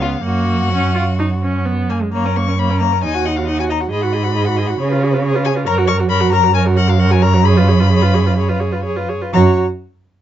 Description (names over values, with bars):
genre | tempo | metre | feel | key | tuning
quick classical-period movement for string quartet | 118-139 BPM | 4/4 | rubato | F# major | A4 = 439 Hz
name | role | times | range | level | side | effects
rich violin | melody | 0.0-9.6 s | E#5 to C#6 | -21 LUFS | left 12 dB | none
rich violin | second line | 0.0-9.6 s | E#4 to F#5 | -25 LUFS | left 4 dB | none
clear viola | accompaniment | 0.0-9.6 s | G#3 to A#4 | -20 LUFS | right 3 dB | none
rich cello | bass | 0.0-9.6 s | C#2 to C#3 | -15 LUFS | right 2 dB | none
room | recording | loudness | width
light reverb | dark, warm production, nothing above 7.7 kHz | -13 LUFS | side -11 dB against mid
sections
0.0-2.1 A section; 2.1-9.3 B section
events
none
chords
0.2 F#; 3.0 D#m; 3.9 G#m7; 4.8 C#7; 5.7 F#; 7.5 C#7/F#; 9.3 F#5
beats
| 0.24 0.72 1.20 1.67 | 2.14 2.59 3.03 3.48 | 3.92 4.35 4.79 5.23 | 5.67 6.10 6.55 7.00 | 7.45 7.91 8.36 8.84 | 9.33